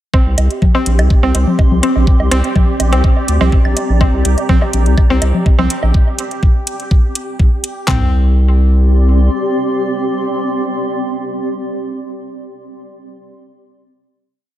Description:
minimal techno; 124 BPM; 4/4; straight; A4 = 439 Hz
mallet-like synth pluck; riff; 0.1-8.1 s; C4; -20 LUFS; equal; chorus, sidechain pumping, analog delay
garage drum kit; drums; 0.1-8.0 s; handclaps, kick drum, toms; -11 LUFS; equal
woodblock, congas and claves; percussion; 0.1-5.9 s; -21 LUFS; left 2 dB; analog delay
bubbling stepped-filter texture; texture; 0.3-7.9 s; G4; -27 LUFS; right 2 dB; chorus, built-in reverb, sidechain pumping
granular cloud pad; texture; 1.0-12.3 s; C4 to C6; -20 LUFS; equal; built-in reverb, sidechain pumping
saturated sub bass; bass; 0.3-9.3 s; Bb1 to D2; -12 LUFS; equal; sidechain pumping
electronic hi-hat; drums; 0.4-7.7 s; -21 LUFS; right 1 dB
light reverb; -11 LUFS; side -13 dB against mid
0.1-7.9 groove; 7.9-11.8 final chord
0.1 C5

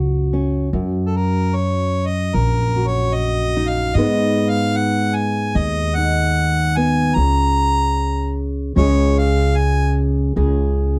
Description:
acoustic folk duo or small band; 75 BPM; 4/4; straight; A4 = 440 Hz
fingerpicked steel-string acoustic guitar; accompaniment; 0.0-11.0 s; F#2 to B4; -24 LUFS; equal
upright bass; bass; 0.0-11.0 s; A#1 to G#2; -21 LUFS; equal
warm harmonica; melody; 1.1-10.0 s; A4 to A#5; -24 LUFS; equal
light reverb; dark, warm production; -18 LUFS; mono
0.0-10.4 A section
harmonica solo 0.0-10.4
0.0 F#5; 0.7 D#m/F#; 4.0 G#m; 7.2 A#m/C#; 8.8 C#; 10.4 C#5

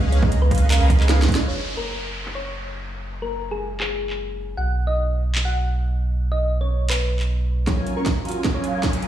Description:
future bass; 155 BPM; 4/4; half-time; F# major; A4 = 439 Hz
big bright polysynth; riff; 0.0-1.5, 7.7-9.1 s; F#3 to C#6; -26 LUFS; right 1 dB; phaser, analog chorus, sidechain pumping, dub echo
saturated sub bass; bass; 0.0-7.7 s; F#1 to C#2; -21 LUFS; right 1 dB; tube saturation, sidechain pumping
thumb-piano-like synth pluck; melody; 0.1-8.7 s; G#4 to F#5; -30 LUFS; left 2 dB; chorus, sidechain pumping, dub echo
trap drum kit; drums; 0.1-9.1 s; handclaps, hi-hat, snare drum; -26 LUFS; right 2 dB; low-pass filter on snare, studio reverb, low-pass filter on hats
electronic kick drum; drums; 0.2-1.4, 7.7-8.9 s; -22 LUFS; right 1 dB; overdrive, studio reverb
downlifter and riser; sound effects; 1.5-4.6, 8.1-9.1 s; -34 LUFS; equal
digital ambience; played on a big sound system in a bare room, large studio reverb, small room ambience; -19 LUFS; side -11 dB against mid
0.0-1.5 A section; 1.5-7.7 B section; 7.7-9.1 C section
drop 0.0-1.5; drum fill 1.1-1.5, 7.7-9.1; filter sweep on drum 1.5-7.7; build-up 7.7-9.1; filter sweep on synth pluck 7.7-9.1; filter sweep 7.7-9.1; riser 8.1-9.1
0.0 C#7; 1.5 F#add9; 4.6 B; 7.7 F#maj7

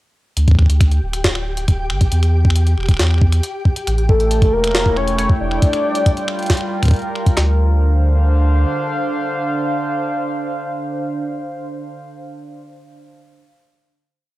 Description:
IDM; 137 BPM; 4/4; straight; D minor; A4 = 440 Hz
warm sub bass; bass; 0.4-8.6 s; D1 to E2; -15 LUFS; equal
jungle sampler-style drum kit; drums; 0.4-7.4 s; finger snaps, hi-hat, snare drum; -23 LUFS; equal; studio reverb
flickering grainy texture; texture; 0.6-5.6 s; G4 to G5; -30 LUFS; left 1 dB; built-in reverb
jungle sampler-style drum kit; drums; 0.5-7.5 s; handclaps, kick drum, snare drum; -14 LUFS; equal; studio reverb
warbly tape-like pad; sustained chords; 4.3-11.6 s; D3 to G5; -22 LUFS; right 1 dB; chorus, built-in reverb
warm velvety synth lead; melody; 4.1-6.9 s; A4 to D5; -19 LUFS; left 1 dB; chorus, tremolo, analog delay
light reverb; dry, gritty hardware recording, cassette tape; -14 LUFS; side -17 dB against mid
0.4-7.4 groove; 7.4-10.9 final chord
0.4 D5; 2.1 Em; 3.9 A7; 5.6 Gm7; 7.4 Dm7

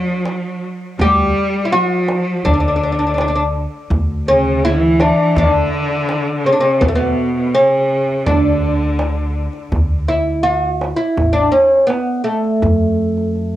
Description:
Arabic maqam ensemble; 82 BPM; 4/4; straight; D maqam rast; A4 = 440 Hz
oud; melody; 0.0-13.3 s; A3 to G4; -15 LUFS; equal; cassette tape
clear cello; second line; 0.0-9.4 s; B2 to G3; -19 LUFS; left 1 dB; analog delay
darbuka; percussion; 0.1-13.4 s; -21 LUFS; right 1 dB
upright bass; bass; 1.0-13.6 s; A1 to F#2-50c; -20 LUFS; equal
moderate studio reverb, RT60 0.6 s; home recording on cassette; -13 LUFS; side -13 dB against mid
0.0-9.7 A section; 9.7-13.6 B section

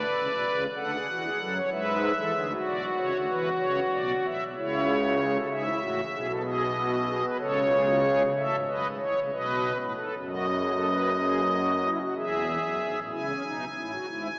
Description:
classical, baroque-style 3-part fugue for pipe organ; 63 BPM (dotted quarters); 12/8; straight; A4 = 440 Hz
pipe organ, strings celeste; solo; 0.0-14.4 s; E1 to G#5; -24 LUFS; equal
wet cathedral reverb, RT60 4.7 s; worn, warbling old tape, cassette tape, warbly pitch drift, small speaker sound; -24 LUFS; side -32 dB against mid
0.0-13.1 A section; 13.1-14.4 B section
0.0 E7; 3.6 A; 5.5 E/G#; 7.4 A/C#; 9.3 B7; 11.2 E; 13.1 C#m7

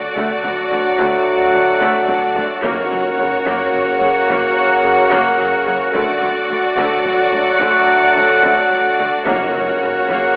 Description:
cinematic, epic orchestral film score; 73 BPM (dotted quarters); 12/8; straight; A4 = 440 Hz
rich symphonic violin section; melody; 0.0-10.4 s; C#5 to D5; -25 LUFS; equal
rich symphonic violin section; second line; 0.0-10.4 s; F#4; -24 LUFS; equal
mellow French horn section; sustained chords; 0.0-10.4 s; A3 to F#4; -25 LUFS; equal
mellow trombone section; sustained chords; 0.0-10.4 s; C#3 to F#3; -26 LUFS; equal
pipe organ, foundations; sustained chords; 0.0-10.4 s; C#4 to F#5; -24 LUFS; equal
bright trumpet section; stabs; 0.0-10.4 s; F#5; -21 LUFS; equal
rich symphonic viola section; accompaniment; 0.2-10.4 s; C#3 to A#3; -27 LUFS; equal
dark symphonic cello section; bass; 0.2-10.2 s; D2 to F#2; -30 LUFS; equal
rich studio double bass section; bass; 0.2-10.2 s; F#1 to D2; -37 LUFS; equal
taiko ensemble; drums; 0.2-10.4 s; -36 LUFS; equal
timpani; percussion; 2.6-3.4, 9.3-10.1 s; F#2; -31 LUFS; equal
wet concert hall reverb, RT60 2.2 s; telephone sound; -15 LUFS; mono
0.0-10.4 A section
drum fill 1.8-2.6
0.0 D; 2.6 F#; 5.9 D; 9.3 F#

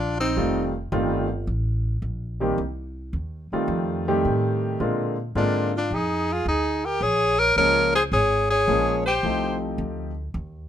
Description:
jazz; 108 BPM; 4/4; swing 69% on 8ths; A4 = 442 Hz
clear tenor saxophone; melody; 0.0-0.7, 5.4-9.6 s; C4 to Bb4; -22 LUFS; left 2 dB
breathy alto saxophone; second line; 0.0-0.7, 5.4-9.6 s; Eb4 to Db5; -28 LUFS; right 5 dB
upright bass; bass; 0.0-10.7 s; F1 to Bb2; -28 LUFS; equal
warm concert grand piano; accompaniment; 0.4-10.1 s; D3 to Ab4; -24 LUFS; equal
light reverb; minimal, uncompressed stereo recording; -21 LUFS; side -10 dB against mid
0.0-10.7 A section
0.4 F9; 2.6 Cm; 3.7 F9; 4.8 Bb9; 7.0 Bbm7; 9.2 F9

